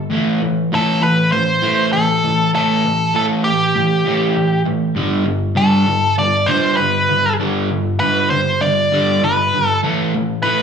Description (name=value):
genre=rock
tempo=99 BPM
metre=4/4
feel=straight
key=A minor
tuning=A4 = 440 Hz
part: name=overdriven semi-hollow guitar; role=riff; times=0.0-10.6 s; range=G2 to A3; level=-17 LUFS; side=equal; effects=slapback echo
part: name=nasal lead guitar with a parked wah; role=melody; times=0.8-10.6 s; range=G4 to D5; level=-16 LUFS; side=equal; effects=overdrive, slapback echo
room=light reverb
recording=live gig heard through the venue's PA, club reverb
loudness=-14 LUFS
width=side -6 dB against mid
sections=0.0-10.6 A section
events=none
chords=0.1 A7(no3); 5.0 G; 9.8 A5